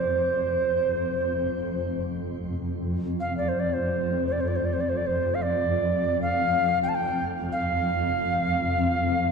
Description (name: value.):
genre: world meditative, free-time meditation music.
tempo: free time.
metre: none.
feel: none.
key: unclear.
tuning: A4 = 441 Hz.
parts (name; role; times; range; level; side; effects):
bright Native American-style cedar flute; melody; 0.0-9.3 s; C5 to A5; -25 LUFS; right 1 dB; shimmer reverb, ping-pong delay.
granular cloud pad; drone; 0.0-9.3 s; F2; -27 LUFS; equal; built-in reverb.
room: wet lush hall reverb, RT60 2.0 s.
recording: dark, warm production.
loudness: -23 LUFS.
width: side -5 dB against mid.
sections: 0.0-9.3 A section.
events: none.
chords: none.